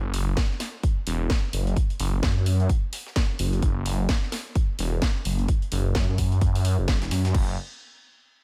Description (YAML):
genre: bass house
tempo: 129 BPM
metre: 4/4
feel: swing 59% on 16ths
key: unclear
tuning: A4 = 443 Hz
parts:
  - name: phased detuned saw bass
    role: bass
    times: 0.0-7.6 s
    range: E1 to F#2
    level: -26 LUFS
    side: equal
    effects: phaser, tube saturation, sidechain pumping
  - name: breakbeat sampler-style drum kit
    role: drums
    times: 0.1-7.3 s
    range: hi-hat, snare drum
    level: -44 LUFS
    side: equal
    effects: none
  - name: garage drum kit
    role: drums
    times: 0.1-7.5 s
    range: crash cymbal, hi-hat, snare drum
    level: -34 LUFS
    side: equal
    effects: none
  - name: electronic kick drum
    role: drums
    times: 0.4-7.5 s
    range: none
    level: -26 LUFS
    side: equal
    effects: none
room: little or no reverb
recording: none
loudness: -25 LUFS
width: mono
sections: 0.0-7.3 A section; 7.3-8.4 B section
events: filter sweep on detuned saw bass 0.0-7.3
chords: none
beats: 0.37 0.83 1.30 | 1.76 2.23 2.69 3.16 | 3.62 4.09 4.55 5.02 | 5.49 5.95 6.42 6.88 | 7.35